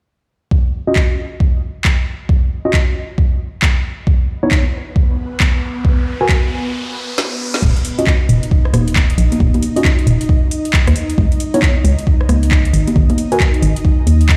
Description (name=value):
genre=UK garage, two-step garage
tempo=135 BPM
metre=4/4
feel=swing 63% on 16ths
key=unclear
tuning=A4 = 440 Hz
part: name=electronic kick drum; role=drums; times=0.5-14.4 s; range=none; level=-16 LUFS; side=equal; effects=overdrive
part: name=mellow tine electric piano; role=stabs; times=0.9-13.4 s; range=Cb4 to Ab5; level=-22 LUFS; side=equal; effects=lush chorus, low-pass filter, dub echo
part: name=garage drum kit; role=drums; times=1.0-14.4 s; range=congas, crash cymbal, handclaps, hi-hat, rim click, snare drum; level=-22 LUFS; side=equal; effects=overdrive
part: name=ethereal airy pad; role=sustained chords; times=4.6-14.4 s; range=Cb4 to Eb5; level=-28 LUFS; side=equal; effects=ensemble chorus, built-in reverb, sidechain pumping
part: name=riser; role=sound effects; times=4.7-7.6 s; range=none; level=-30 LUFS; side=equal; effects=none
part: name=organ-like FM bass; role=bass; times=7.6-14.4 s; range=Eb1 to Eb2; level=-15 LUFS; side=equal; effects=sidechain pumping
room=digital ambience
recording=played on a big sound system in a bare room, stone room reverb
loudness=-15 LUFS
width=mono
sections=0.5-7.6 A section; 7.6-14.4 B section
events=filter sweep on tine electric piano 0.5-7.6, 7.6-14.4; riser 5.0-7.6; break 6.7-7.6; drum fill 7.2-7.6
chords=0.5 Ebm9; 3.8 N.C.; 11.0 Dbsus2; 13.0 Ab5